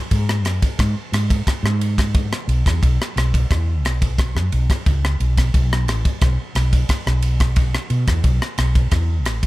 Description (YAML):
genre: electric jazz fusion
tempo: 89 BPM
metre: 4/4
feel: straight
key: unclear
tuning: A4 = 440 Hz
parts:
  - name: woody fretless electric bass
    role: bass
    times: 0.1-9.5 s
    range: A1 to B2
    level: -18 LUFS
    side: equal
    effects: wide subtle chorus
  - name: crisp fusion drum kit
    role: drums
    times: 0.1-9.5 s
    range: kick drum, ride cymbal, rim click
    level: -20 LUFS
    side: equal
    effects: none
room: little or no reverb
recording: none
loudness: -16 LUFS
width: side -18 dB against mid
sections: 0.0-9.5 A section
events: none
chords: none